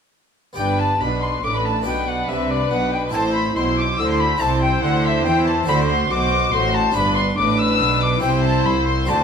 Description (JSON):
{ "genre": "classical, baroque-style concerto movement with solo episodes", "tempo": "141 BPM", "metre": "3/4", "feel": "straight", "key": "G major", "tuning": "A4 = 441 Hz", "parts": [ { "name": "harpsichord", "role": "accompaniment", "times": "0.5-9.2 s", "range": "C2 to E5", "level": "-30 LUFS", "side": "right 1 dB", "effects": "none" }, { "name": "dark chamber violin section", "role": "melody", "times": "0.6-9.2 s", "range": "D5 to E6", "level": "-24 LUFS", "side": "left 4 dB", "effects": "none" }, { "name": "dark violin", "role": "melody", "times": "0.6-9.2 s", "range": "D5 to E6", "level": "-23 LUFS", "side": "left 2 dB", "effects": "none" }, { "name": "rich chamber violin section", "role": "second line", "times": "0.6-9.2 s", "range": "B4 to C5", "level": "-25 LUFS", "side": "left 1 dB", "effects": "none" }, { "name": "dark chamber viola section", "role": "accompaniment", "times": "0.6-9.2 s", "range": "D4 to F#4", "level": "-25 LUFS", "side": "left 1 dB", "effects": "none" }, { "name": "rich chamber double bass section", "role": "bass", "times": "0.6-9.2 s", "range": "G1 to E2", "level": "-24 LUFS", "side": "right 2 dB", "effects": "none" }, { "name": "warm chamber cello section", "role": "bass", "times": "0.6-9.2 s", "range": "C2 to E3", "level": "-25 LUFS", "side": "right 3 dB", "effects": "none" } ], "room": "moderate recital hall reverb, RT60 1.3 s", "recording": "close, detailed microphones", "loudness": "-16 LUFS", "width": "side -6 dB against mid", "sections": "0.6-9.2 A section", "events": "none", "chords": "0.6 G; 1.9 G/B; 3.1 Am; 4.4 C69; 5.7 D7; 7.0 G; 8.2 C" }